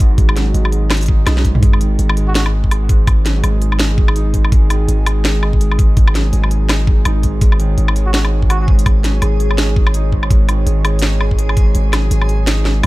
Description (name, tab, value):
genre	half-time drum and bass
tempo	166 BPM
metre	4/4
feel	swing 59% on 16ths, half-time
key	unclear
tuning	A4 = 440 Hz
part	dark analog pad	sustained chords	0.0-12.9 s	G#3 to C#5	-26 LUFS	equal	chorus, sidechain pumping
part	felt-muted upright piano	arpeggios	0.0-12.9 s	G#2 to G#4	-26 LUFS	right 4 dB	dub echo
part	long sustained 808-style bass	bass	0.0-12.9 s	G#1 to B1	-15 LUFS	equal	none
part	drum and bass drum kit	drums	0.0-12.9 s	hi-hat, snare drum, toms, woodblock	-20 LUFS	equal	none
part	electronic kick drum	drums	0.0-11.7 s	none	-13 LUFS	equal	none
part	backwards swelling texture	texture	3.6-12.9 s	G#4	-30 LUFS	left 1 dB	built-in reverb
part	trumpet with plunger mute	melody	2.3-2.4, 8.1-8.7 s	F#4	-28 LUFS	right 2 dB	dub echo
room	little or no reverb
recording	none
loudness	-12 LUFS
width	side -19 dB against mid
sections	0.0-12.9 A section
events	drum fill 1.3-1.6, 12.7; kick drops out 11.7-12.9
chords	0.0 G#5